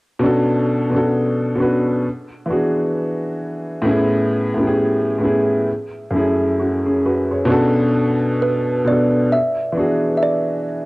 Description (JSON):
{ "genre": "hip hop", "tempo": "66 BPM", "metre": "4/4", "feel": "swing 57% on 16ths", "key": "B dorian", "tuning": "A4 = 440 Hz", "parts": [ { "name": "warm upright piano", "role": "accompaniment", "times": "0.2-10.9 s", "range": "F#2 to C#5", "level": "-16 LUFS", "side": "equal", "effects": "cassette tape, low-pass filter" }, { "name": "kalimba", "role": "melody", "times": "8.4-10.9 s", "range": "B4 to E5", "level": "-19 LUFS", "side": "right 1 dB", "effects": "low-pass filter" } ], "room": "moderate spring reverb, RT60 2.4 s", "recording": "home recording on cassette", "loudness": "-16 LUFS", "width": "side -22 dB against mid", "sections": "0.2-7.5 A section; 7.5-10.9 B section", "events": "none", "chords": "0.2 Bm9; 2.0 E9; 3.9 Amaj9; 5.7 F#m9; 7.5 Bm9; 9.3 E9" }